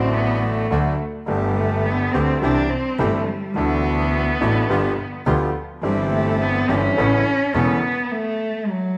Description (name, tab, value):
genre	tango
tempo	105 BPM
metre	4/4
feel	rubato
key	G major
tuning	A4 = 441 Hz
part	dark cello	second line	0.0-9.0 s	F#3 to D4	-25 LUFS	equal	none
part	clear upright piano	accompaniment	0.0-7.8 s	E1 to G4	-26 LUFS	equal	none
part	bandoneon	stabs	0.0-7.8 s	A3 to A4	-30 LUFS	equal	slapback echo
part	clear double bass	bass	0.0-7.8 s	E1 to D2	-26 LUFS	equal	none
room	wet echo chamber reverb, RT60 1.5 s, studio reverb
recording	none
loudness	-20 LUFS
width	mono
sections	0.0-9.0 A section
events	cello solo 0.0-9.0; stop 8.1-9.0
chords	0.0 D; 1.3 Gadd9; 2.4 C; 3.6 Dadd9; 4.7 G7; 5.8 C/G; 7.0 Aadd9; 8.1 N.C.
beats	0.14 0.71 | 1.28 1.85 2.42 2.99 | 3.56 4.13 4.70 5.26 | 5.83 6.40 6.97 7.54 | 8.12 8.69